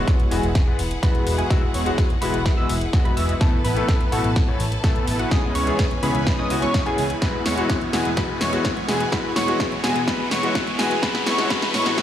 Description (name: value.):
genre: EDM, festival progressive house.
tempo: 126 BPM.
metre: 4/4.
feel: straight.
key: E major.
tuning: A4 = 440 Hz.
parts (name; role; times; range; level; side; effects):
bright grand piano; accompaniment; 0.0-12.0 s; A2 to C#5; -27 LUFS; left 4 dB; sidechain pumping, ping-pong delay.
bright studio string section; sustained chords; 0.0-12.0 s; E4 to B5; -32 LUFS; left 1 dB; sidechain pumping.
plucky unison lead; arpeggios; 0.0-12.0 s; F#5 to E6; -28 LUFS; equal; cassette tape, sidechain pumping, ping-pong delay.
dense compressed supersaw; riff; 0.0-12.0 s; G#3 to E5; -26 LUFS; equal; sidechain pumping, low-pass filter, ping-pong delay.
riser; sound effects; 0.0-12.0 s; none; -32 LUFS; right 1 dB; none.
big-room dance drum kit; drums; 0.1-12.0 s; hi-hat, snare drum; -28 LUFS; equal; none.
electronic kick drum; drums; 0.1-12.0 s; none; -20 LUFS; equal; none.
fat analog bass; bass; 0.3-12.0 s; E1 to C#2; -26 LUFS; equal; sidechain pumping.
room: moderate digital room reverb, RT60 1.1 s.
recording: played on a big sound system in a bare room, stone room reverb, high-pass filter.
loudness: -18 LUFS.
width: side -11 dB against mid.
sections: 0.0-12.0 A section.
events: build-up 0.0-12.0; drum fill 0.0-12.0; riser 0.0-12.0; filter sweep on supersaw synth 0.0-12.0; filter sweep on digital synth lead 0.0-12.0; filter sweep 0.0-12.0.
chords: 0.0 Eadd9; 3.4 Asus2; 5.3 C#m7; 7.2 Eadd9; 11.0 Asus2.